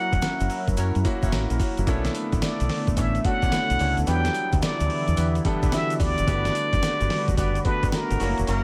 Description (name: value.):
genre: R&B, new jack swing.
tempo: 109 BPM.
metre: 4/4.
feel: swing 65% on 16ths.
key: unclear.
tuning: A4 = 440 Hz.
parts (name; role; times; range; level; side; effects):
trumpet with plunger mute; melody; 0.0-8.6 s; A#4 to G5; -30 LUFS; equal; none.
clear concert grand piano; accompaniment; 0.0-8.6 s; F#3 to A#5; -33 LUFS; equal; none.
phased analog pad; sustained chords; 0.0-8.6 s; D3 to B4; -33 LUFS; equal; phaser, chorus.
deep dub fingered electric bass; bass; 0.1-8.6 s; E1 to F#2; -27 LUFS; equal; none.
dusty soul sampler-style drum kit; drums; 0.1-8.6 s; hi-hat, kick drum, snare drum, tambourine; -29 LUFS; equal; gated reverb.
egg shaker; percussion; 0.1-8.6 s; none; -47 LUFS; equal; none.
dark horn section; stabs; 0.8-8.6 s; A#3 to C#5; -38 LUFS; equal; none.
room: light reverb, studio reverb.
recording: none.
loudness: -24 LUFS.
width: mono.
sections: 0.0-8.6 A section.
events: grand piano fill 0.8-1.9.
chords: 0.0 F#7; 1.9 Bm11; 4.1 Em7; 6.3 Gmaj7.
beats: 0.22 0.77 1.32 | 1.87 2.42 2.97 3.52 | 4.07 4.62 5.17 5.73 | 6.28 6.83 7.38 7.93 | 8.48.